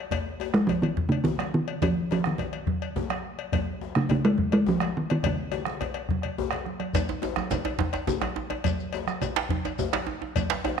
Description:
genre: west african traditional, West African drum ensemble.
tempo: 141 BPM (dotted quarters).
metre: 12/8.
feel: straight.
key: Db major pentatonic.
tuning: A4 = 439 Hz.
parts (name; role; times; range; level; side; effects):
bombo; percussion; 0.1-10.8 s; none; -32 LUFS; left 1 dB; none.
congas; percussion; 0.1-10.5 s; none; -34 LUFS; right 8 dB; none.
cowbell; percussion; 0.1-10.8 s; none; -35 LUFS; left 12 dB; none.
djembe; percussion; 0.1-10.8 s; none; -35 LUFS; left 7 dB; none.
talking drum; melody; 0.5-5.8 s; Db3 to Ab3; -24 LUFS; right 1 dB; none.
djembe; percussion; 6.9-10.8 s; none; -30 LUFS; right 7 dB; none.
shekere; percussion; 6.9-10.7 s; none; -39 LUFS; left 4 dB; none.
room: wet echo chamber reverb, RT60 1.7 s, small room ambience.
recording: 1960s-style stereo with parts hard left and right.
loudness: -25 LUFS.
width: side -7 dB against mid.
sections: 0.0-7.0 A section; 7.0-10.8 B section.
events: drum fill 6.2-7.0.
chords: none.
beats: | 0.12 0.54 0.97 1.40 | 1.83 2.25 2.68 3.11 | 3.54 3.96 4.39 4.82 | 5.24 5.67 6.10 6.52 | 6.95 7.38 7.80 8.23 | 8.65 9.08 9.51 9.93 | 10.36 10.79.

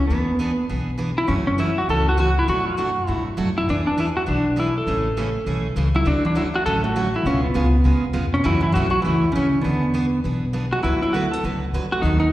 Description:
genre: country, western swing.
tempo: 201 BPM.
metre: 4/4.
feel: swing 61% on 8ths.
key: unclear.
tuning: A4 = 441 Hz.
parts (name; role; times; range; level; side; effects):
pedal steel guitar; melody; 0.0-12.3 s; B3 to A4; -22 LUFS; equal; plate reverb, slapback echo.
picked steel-string acoustic guitar; accompaniment; 0.1-12.2 s; B2 to B4; -26 LUFS; right 2 dB; plate reverb, slapback echo.
upright bass; bass; 0.1-12.3 s; A1 to G#2; -24 LUFS; left 1 dB; none.
archtop guitar, miked and amplified; second line; 5.9-12.3 s; G#2 to C#4; -26 LUFS; right 1 dB; plate reverb, slapback echo.
room: moderate club ambience, RT60 0.5 s.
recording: live gig heard through the venue's PA, recital hall reverb.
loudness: -18 LUFS.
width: side -15 dB against mid.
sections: 0.0-12.3 A section.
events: none.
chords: 0.1 E7; 1.3 F#m7; 2.5 Bm7/F#; 3.7 E7; 4.9 Amaj7; 6.1 Dmaj7; 7.3 C#7; 8.4 F#m7; 9.6 E7; 10.8 D6.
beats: | 0.10 0.40 0.69 0.99 | 1.29 1.59 1.89 2.18 | 2.48 2.78 3.08 3.38 | 3.67 3.97 4.27 4.57 | 4.87 5.17 5.46 5.76 | 6.06 6.36 6.66 6.96 | 7.26 7.55 7.85 8.15 | 8.45 8.75 9.05 9.35 | 9.64 9.94 10.24 10.54 | 10.84 11.14 11.43 11.73 | 12.03.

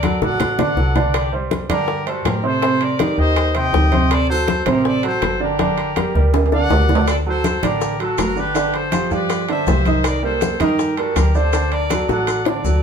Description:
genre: latin, salsa.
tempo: 162 BPM.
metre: 4/4.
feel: straight.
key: unclear.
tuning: A4 = 440 Hz.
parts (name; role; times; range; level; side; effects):
bright trumpet section; melody; 0.0-12.8 s; F#4 to G5; -22 LUFS; left 2 dB; none.
bright upright piano; accompaniment; 0.0-12.8 s; C3 to Eb5; -20 LUFS; right 4 dB; none.
deep dub fingered electric bass; bass; 0.0-12.8 s; G1 to A2; -21 LUFS; equal; none.
bongos; percussion; 0.0-12.7 s; none; -25 LUFS; left 7 dB; none.
congas; percussion; 0.0-12.8 s; none; -25 LUFS; left 3 dB; none.
timbales; percussion; 0.0-12.6 s; none; -26 LUFS; right 4 dB; none.
maracas; percussion; 7.1-12.8 s; none; -36 LUFS; left 6 dB; none.
room: wet studio reverb, RT60 0.6 s.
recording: band playing live in one room.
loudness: -15 LUFS.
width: side -7 dB against mid.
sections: 0.0-12.8 A section.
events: drum fill 0.0-1.1, 5.6-7.1, 12.1-12.8.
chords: 0.0 D; 1.1 Csus2; 2.6 Am7b5; 4.1 D7; 5.6 Gm; 7.1 D; 8.6 G7; 10.0 Cm7; 11.5 D.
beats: 0.04 0.41 0.78 | 1.15 1.52 1.89 2.26 | 2.63 3.00 3.37 3.74 | 4.11 4.48 4.85 5.22 | 5.59 5.96 6.33 6.70 | 7.07 7.44 7.82 8.19 | 8.56 8.93 9.30 9.67 | 10.04 10.42 10.79 11.16 | 11.53 11.90 12.28 12.65.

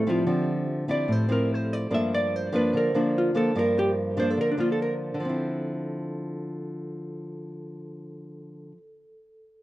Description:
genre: bossa nova.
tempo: 146 BPM.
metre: 4/4.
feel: straight.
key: D minor.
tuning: A4 = 440 Hz.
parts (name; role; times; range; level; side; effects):
vintage hollow-body jazz guitar; melody; 0.0-4.9 s; F3 to E5; -26 LUFS; right 1 dB; none.
nylon-string guitar; accompaniment; 0.0-8.9 s; G2 to E4; -27 LUFS; equal; none.
vibraphone with soft mallets; accompaniment; 0.0-9.6 s; G4 to E5; -36 LUFS; right 2 dB; slapback echo.
room: little or no reverb.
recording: recorded outdoors, with no room sound, nothing above 10.6 kHz.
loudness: -24 LUFS.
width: side -16 dB against mid.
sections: 0.0-5.2 A section; 5.2-8.5 B section.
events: hollow-body jazz guitar solo 0.0-5.2.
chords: 0.0 Dm9; 1.9 Gm7; 5.2 Dm9.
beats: | 0.27 0.68 1.09 1.50 | 1.91 2.32 2.73 3.14 | 3.55 3.96 4.37 4.78 | 5.19 5.60 6.01 6.42 | 6.83 7.24 7.65 8.06.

